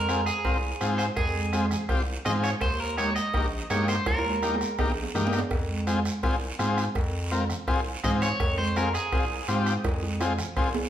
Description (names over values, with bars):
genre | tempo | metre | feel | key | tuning
latin, cumbia | 166 BPM | 4/4 | straight | F minor | A4 = 439 Hz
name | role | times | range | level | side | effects
electric guitar at the edge of break-up | melody | 0.0-4.8, 8.0-10.9 s | Ab4 to Eb5 | -30 LUFS | right 2 dB | spring reverb
growling FM bass | bass | 0.0-10.9 s | Bb1 to Ab2 | -31 LUFS | equal | none
combo organ | accompaniment | 0.1-10.7 s | Bb3 to Bb4 | -30 LUFS | left 3 dB | none
bombo | percussion | 0.1-10.7 s | none | -32 LUFS | equal | none
congas | percussion | 0.1-10.6 s | none | -32 LUFS | right 2 dB | none
guiro | percussion | 0.1-10.9 s | none | -39 LUFS | right 4 dB | none
cowbell and timbales | percussion | 0.4-10.8 s | none | -35 LUFS | right 4 dB | none
room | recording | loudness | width
wet large studio reverb, RT60 0.9 s | band playing live in one room | -24 LUFS | side -10 dB against mid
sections
0.0-10.9 A section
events
drum fill 4.1-5.5, 9.8-10.9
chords
0.0 Fm; 2.6 Eb; 5.5 Fm